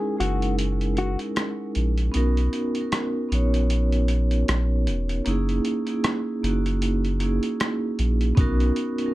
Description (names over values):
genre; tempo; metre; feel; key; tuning
lo-fi hip hop; 77 BPM; 4/4; swing 59% on 16ths; B major; A4 = 440 Hz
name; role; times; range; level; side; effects
hollow-body jazz guitar; melody; 0.0-1.2 s; F#4 to G#4; -30 LUFS; left 4 dB; low-pass filter, analog delay
vibraphone with medium mallets; accompaniment; 0.0-9.1 s; G#3 to C#5; -25 LUFS; right 1 dB; low-pass filter
soft dub sub bass; bass; 0.2-8.7 s; E1 to B1; -22 LUFS; equal; none
boom bap sampler-style drum kit; drums; 0.2-9.1 s; hi-hat, kick drum, rim click; -27 LUFS; equal; none
room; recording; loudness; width
little or no reverb; dark, warm production; -21 LUFS; side -17 dB against mid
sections
0.0-9.1 A section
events
break 0.0-8.4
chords
0.0 F#13; 2.1 Bmaj7; 5.3 F#13; 8.4 Bmaj7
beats
0.58 1.36 | 2.14 2.92 3.70 4.48 | 5.26 6.04 6.82 7.60 | 8.38